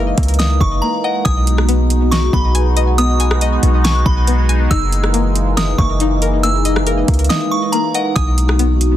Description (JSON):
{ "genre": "hip hop, atmospheric cloud-rap", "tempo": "139 BPM", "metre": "4/4", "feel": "half-time", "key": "B major", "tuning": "A4 = 439 Hz", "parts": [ { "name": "sweeping resonant pad", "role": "sustained chords", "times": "0.0-9.0 s", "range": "E3 to F#4", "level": "-19 LUFS", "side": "equal", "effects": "chorus, sidechain pumping" }, { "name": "string-like resonator pluck", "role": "arpeggios", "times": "0.0-9.0 s", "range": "A#3 to G#5", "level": "-24 LUFS", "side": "left 8 dB", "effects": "chorus, digital delay" }, { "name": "warm 808-style bass", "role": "bass", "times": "0.0-9.0 s", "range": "F#1 to C#2", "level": "-15 LUFS", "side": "equal", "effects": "none" }, { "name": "smooth R&B drum kit", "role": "drums", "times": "0.2-8.9 s", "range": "hi-hat, kick drum, rim click, snare drum", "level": "-18 LUFS", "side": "equal", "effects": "overdrive" }, { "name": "delicate synth tine bell", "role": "melody", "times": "0.4-8.6 s", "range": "F#5 to E6", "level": "-22 LUFS", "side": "right 1 dB", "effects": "chorus, digital delay" } ], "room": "digital ambience", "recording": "dense, heavily limited modern master", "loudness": "-12 LUFS", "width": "side -12 dB against mid", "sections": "0.0-1.3 A section; 1.3-9.0 B section", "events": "break 0.8-1.3; kick muted 7.3-8.2", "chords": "0.0 F#13; 1.3 B6; 4.7 F#13; 8.2 B6" }